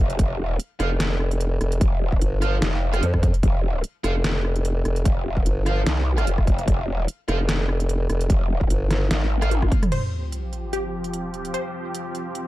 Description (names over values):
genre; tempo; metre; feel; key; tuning
heavy wobble dubstep; 148 BPM; 4/4; swing 55% on 16ths, half-time; F minor; A4 = 439 Hz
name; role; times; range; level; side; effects
growl bass; bass; 0.0-9.7 s; F1 to C2; -23 LUFS; equal; chorus, overdrive
dubstep drum kit; drums; 0.1-12.4 s; crash cymbal, hi-hat, rim click, snare drum, toms; -28 LUFS; equal; none
electronic kick drum; drums; 0.2-9.8 s; none; -21 LUFS; equal; overdrive
high-gain distorted guitar; stabs; 0.8-9.5 s; F4 to F5; -32 LUFS; right 4 dB; distortion, ping-pong delay
formant-sweep wobble bass; bass; 0.8-9.1 s; F1 to F2; -22 LUFS; equal; chorus, overdrive
wide unison pluck; melody; 9.9-12.5 s; G4 to C5; -31 LUFS; left 1 dB; ping-pong delay
supersaw pad; sustained chords; 9.9-12.5 s; F3 to G4; -30 LUFS; equal; sidechain pumping, low-pass filter
sub drop; sound effects; 9.9-11.5 s; none; -31 LUFS; equal; none
room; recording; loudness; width
digital ambience; dark, warm production; -20 LUFS; side -16 dB against mid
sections
0.0-9.9 A section; 9.9-12.5 B section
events
drop 0.0-9.9; drum fill 9.5-9.9; impact 9.9-11.5; filter sweep on supersaw synth 9.9-12.5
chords
0.0 F5; 9.9 Fsus2